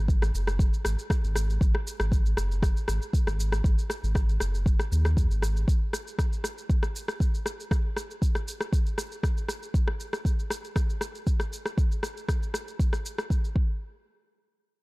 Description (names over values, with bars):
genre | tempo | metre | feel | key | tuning
afro house | 118 BPM | 4/4 | straight | unclear | A4 = 440 Hz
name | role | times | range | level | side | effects
warm sub bass | bass | 0.0-5.6 s | F#1 to D#2 | -26 LUFS | equal | sidechain pumping
electronic kick drum | drums | 0.1-13.7 s | none | -25 LUFS | equal | none
electronic shaker and rim click | drums | 0.1-13.5 s | none | -34 LUFS | left 1 dB | none
room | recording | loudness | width
little or no reverb | dark, warm production | -25 LUFS | side -23 dB against mid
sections
0.0-13.8 A section; 13.8-14.8 B section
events
none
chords
none